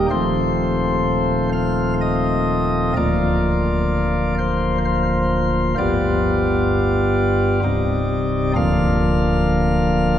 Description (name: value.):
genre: classical, chorale-style piece for pipe organ.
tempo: 64 BPM.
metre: 3/4.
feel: rubato.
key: Bb major.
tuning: A4 = 441 Hz.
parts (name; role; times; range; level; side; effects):
chamber organ, sparkling flutes; solo; 0.0-10.2 s; C1 to F5; -16 LUFS; equal; none.
room: wet church reverb, RT60 3.5 s.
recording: heard from further back in the room.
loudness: -17 LUFS.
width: side -10 dB against mid.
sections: 0.0-10.2 A section.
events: none.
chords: 0.1 F7/Eb; 3.0 Bb/D; 5.8 G7; 7.6 Cm; 8.6 Bb/D.